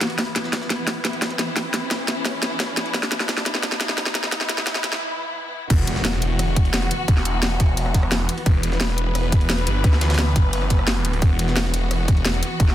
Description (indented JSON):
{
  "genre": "dark technical drum and bass",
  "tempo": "174 BPM",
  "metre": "4/4",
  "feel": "straight",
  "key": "unclear",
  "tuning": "A4 = 440 Hz",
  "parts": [
    { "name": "clear studio string section", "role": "sustained chords", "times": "0.0-12.7 s", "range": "E3 to B4", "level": "-28 LUFS", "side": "left 1 dB", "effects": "sidechain pumping" },
    { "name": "drum and bass drum kit", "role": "drums", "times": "0.0-12.7 s", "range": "crash cymbal, hi-hat, rim click, snare drum", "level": "-24 LUFS", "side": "equal", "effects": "overdrive" },
    { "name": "jungle sampler-style drum kit", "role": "drums", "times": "0.0-12.7 s", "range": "ride cymbal, snare drum", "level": "-34 LUFS", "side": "right 1 dB", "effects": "none" },
    { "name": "riser and impact", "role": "sound effects", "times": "0.0-7.1 s", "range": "none", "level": "-30 LUFS", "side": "equal", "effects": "none" },
    { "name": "electronic kick drum", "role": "drums", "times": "0.2-12.7 s", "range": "none", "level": "-18 LUFS", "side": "equal", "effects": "high-pass filter on kick, high-pass filter on room" },
    { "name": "snarling distorted saw bass", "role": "bass", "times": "5.7-12.7 s", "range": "E1 to D2", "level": "-22 LUFS", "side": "equal", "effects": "distortion, overdrive" }
  ],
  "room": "light reverb, digital ambience",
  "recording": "dense, heavily limited modern master, high-pass filter",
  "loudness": "-19 LUFS",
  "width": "side -12 dB against mid",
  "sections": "0.0-5.7 A section; 5.7-12.7 B section",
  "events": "build-up 0.0-5.7; drum fill 0.0-5.0; riser 0.0-5.0; filter sweep on string section 0.0-5.7; break 5.0-5.7; drop 5.7-12.7; impact 5.7-7.1",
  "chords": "0.0 E5; 5.7 Esus2"
}